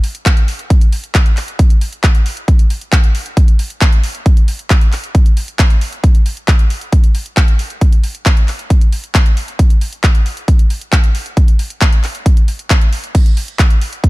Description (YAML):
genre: trance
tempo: 135 BPM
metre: 4/4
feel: straight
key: none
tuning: none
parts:
  - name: big-room dance drum kit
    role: drums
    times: 0.0-14.1 s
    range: crash cymbal, handclaps, hi-hat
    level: -20 LUFS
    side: equal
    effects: overdrive, small room ambience
  - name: electronic kick drum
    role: drums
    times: 0.3-14.1 s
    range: none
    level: -10 LUFS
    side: equal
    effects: overdrive, small room ambience
room: digital ambience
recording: dark, warm production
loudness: -10 LUFS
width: side -20 dB against mid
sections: 0.0-14.1 A section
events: none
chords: none